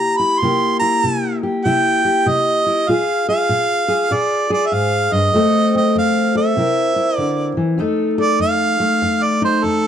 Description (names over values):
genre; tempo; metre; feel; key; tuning
acoustic country blues, solo or duo; 98 BPM; 4/4; swing 64% on 8ths; unclear; A4 = 440 Hz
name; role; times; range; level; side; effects
clear harmonica; melody; 0.0-9.9 s; A4 to C6; -17 LUFS; right 2 dB; plate reverb
fingerpicked steel-string acoustic guitar; accompaniment; 0.0-9.9 s; F2 to Bb4; -18 LUFS; left 2 dB; none
room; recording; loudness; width
moderate studio ambience, RT60 0.4 s; dark, warm production, vinyl crackle; -14 LUFS; side -9 dB against mid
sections
0.0-7.8 A section; 7.8-9.9 B section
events
harmonica solo 7.8-9.9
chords
0.0 C7; 2.9 Bb5; 5.3 F; 6.6 C7; 7.8 F7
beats
| 0.42 1.03 1.65 2.27 | 2.88 3.50 4.11 4.72 | 5.34 5.95 6.57 7.18 | 7.79 8.41 9.02 9.63